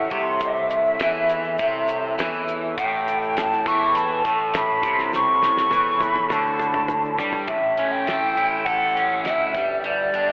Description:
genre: psychedelic rock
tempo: 102 BPM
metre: 4/4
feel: straight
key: A mixolydian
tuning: A4 = 439 Hz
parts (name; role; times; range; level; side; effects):
- breathy mellow silver concert flute; melody; 0.0-10.3 s; D5 to C#6; -24 LUFS; equal; tape echo
- percussive tonewheel organ; sustained chords; 0.0-10.3 s; E3 to C#5; -36 LUFS; equal; slow rotary speaker
- crunchy overdriven guitar; riff; 0.0-10.3 s; A2 to A4; -28 LUFS; equal; phaser
- growling picked electric bass; bass; 0.0-10.3 s; G1 to G2; -36 LUFS; equal; overdrive
- damped 70s drum kit; drums; 0.1-10.3 s; hi-hat, kick drum, snare drum, toms; -35 LUFS; equal; none
- egg shaker; percussion; 0.1-7.4 s; none; -54 LUFS; equal; none
room: wet cathedral reverb, RT60 4.8 s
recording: dreamy mix soaked in reverb, telephone sound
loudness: -22 LUFS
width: mono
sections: 0.0-7.5 A section; 7.5-10.3 B section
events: drum fill 5.1-7.5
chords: 0.0 A; 9.6 G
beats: | 0.41 1.00 1.59 2.19 | 2.77 3.36 3.95 4.54 | 5.13 5.72 6.31 6.90 | 7.49 8.08 8.67 9.26 | 9.85

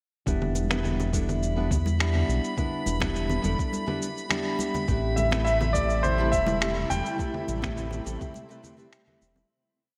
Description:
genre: sunset chillout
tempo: 104 BPM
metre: 4/4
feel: straight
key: A minor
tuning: A4 = 441 Hz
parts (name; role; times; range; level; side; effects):
- nylon-string guitar; accompaniment; 0.3-9.5 s; G3 to D5; -33 LUFS; equal; low-pass filter, delay
- round analog bass; bass; 0.3-9.4 s; E1 to E2; -30 LUFS; equal; none
- electronic cabasa, congas and finger snaps; drums; 0.3-9.5 s; none; -35 LUFS; equal; none
- electronic kick drum; drums; 0.3-8.3 s; none; -32 LUFS; equal; none
- drifting glass-harmonics texture; texture; 1.1-9.5 s; B5; -40 LUFS; equal; chorus, built-in reverb
- congas; percussion; 0.6-9.5 s; none; -38 LUFS; equal; none
- shimmering ambient pad; sustained chords; 5.9-9.5 s; C3 to E4; -38 LUFS; equal; chorus, built-in reverb
- bright grand piano; melody; 5.2-8.9 s; C5 to G5; -29 LUFS; equal; delay
room: wet lush hall reverb, RT60 1.8 s, small room ambience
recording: dreamy mix soaked in reverb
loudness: -26 LUFS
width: mono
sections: 0.3-9.5 groove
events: fade-out 6.4-9.5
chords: 0.3 Em7; 4.9 Am9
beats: | 0.27 0.85 1.42 2.00 | 2.58 3.15 3.73 4.31 | 4.88 5.46 6.04 6.62 | 7.19 7.77 8.35 8.92

